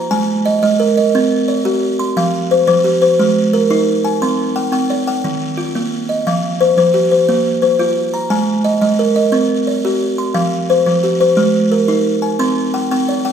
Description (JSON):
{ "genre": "southern african traditional", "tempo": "117 BPM (dotted quarters)", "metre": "12/8", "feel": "straight", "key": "F equiheptatonic", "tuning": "A4 = 438 Hz", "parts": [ { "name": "buzzing kalimba", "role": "solo", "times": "0.0-13.3 s", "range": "Eb3+29c to C6", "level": "-12 LUFS", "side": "equal", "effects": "none" } ], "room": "wet recital hall reverb, RT60 1.4 s", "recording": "recorded in a church or concert hall", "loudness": "-12 LUFS", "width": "side -8 dB against mid", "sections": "0.0-13.3 A section", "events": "none", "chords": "0.1 Ab5; 1.1 Cm; 2.2 F5; 3.2 Ab; 4.2 C5; 5.2 Eb; 6.3 F5; 7.3 Bb5; 8.3 Ab5; 9.3 Cm; 10.3 F5; 11.4 Ab; 12.4 C5" }